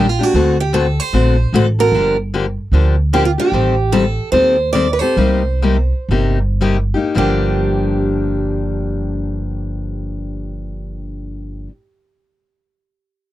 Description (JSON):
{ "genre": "acoustic string swing (jazz manouche)", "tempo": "106-151 BPM", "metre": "4/4", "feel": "swing 63% on 8ths", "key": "G minor", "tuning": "A4 = 436 Hz", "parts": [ { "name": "picked steel-string acoustic guitar", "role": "melody", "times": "0.0-11.7 s", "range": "F4 to D5", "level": "-18 LUFS", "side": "right 4 dB", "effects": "none" }, { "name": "picked steel-string acoustic guitar", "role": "accompaniment", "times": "0.0-11.7 s", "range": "G2 to A4", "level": "-18 LUFS", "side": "left 4 dB", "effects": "none" }, { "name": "upright bass", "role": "bass", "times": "0.0-11.7 s", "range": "G1 to Eb2", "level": "-18 LUFS", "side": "right 1 dB", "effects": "none" } ], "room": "little or no reverb", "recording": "dry, close 1970s-style studio recording", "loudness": "-14 LUFS", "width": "side -14 dB against mid", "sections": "0.0-3.5 A section; 3.5-7.2 B section; 7.2-11.7 C section", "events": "slowing down 3.5-7.2", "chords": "0.3 D7; 1.9 Gm7; 3.5 Am7b5; 5.2 Cm7; 7.2 Gm7", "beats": "| 0.34 0.74 1.14 1.53 | 1.93 2.33 2.73 3.12 | 3.52 3.92 4.32 4.74 | 5.17 5.62 6.10 6.61 | 7.15 7.72 8.29 8.85 | 9.42 9.99 10.56 11.12" }